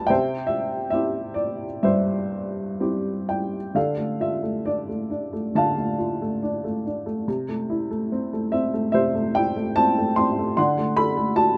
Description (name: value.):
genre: classical, lyrical solo piano.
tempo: 60-77 BPM.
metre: 4/4.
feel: rubato.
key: unclear.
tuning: A4 = 440 Hz.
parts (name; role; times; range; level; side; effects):
dark upright piano; solo; 0.0-11.6 s; D2 to C6; -24 LUFS; equal; none.
room: light reverb.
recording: close, detailed microphones.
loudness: -24 LUFS.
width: mono.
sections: 0.0-3.8 A section; 3.8-11.6 B section.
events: none.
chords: 0.1 C; 3.8 Dm; 7.3 Am/C; 10.6 D7.